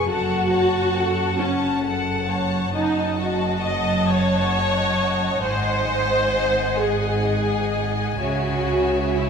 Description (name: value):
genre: classical, slow romantic movement for string orchestra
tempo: 44 BPM (dotted quarters)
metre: 6/8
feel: uneven beats, rubato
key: unclear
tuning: A4 = 440 Hz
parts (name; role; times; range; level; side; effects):
- rich studio violin section; melody; 0.0-9.3 s; F#5 to A5; -28 LUFS; left 6 dB; none
- warm studio violin section; second line; 0.0-9.3 s; A4 to A5; -28 LUFS; left 4 dB; none
- rich studio viola section; accompaniment; 0.0-9.3 s; C#4 to D#5; -22 LUFS; right 1 dB; none
- rich studio cello section; bass; 0.0-9.3 s; F#2 to C#3; -26 LUFS; right 2 dB; none
- rich studio double bass section; bass; 0.0-9.3 s; F#1 to C#2; -29 LUFS; right 2 dB; none
room: wet concert hall reverb, RT60 2.2 s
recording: minimal, uncompressed stereo recording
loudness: -19 LUFS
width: side -6 dB against mid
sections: 0.0-9.3 A section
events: none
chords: 0.1 F#m; 2.7 D#dim/F#; 5.4 G#7; 8.2 C#m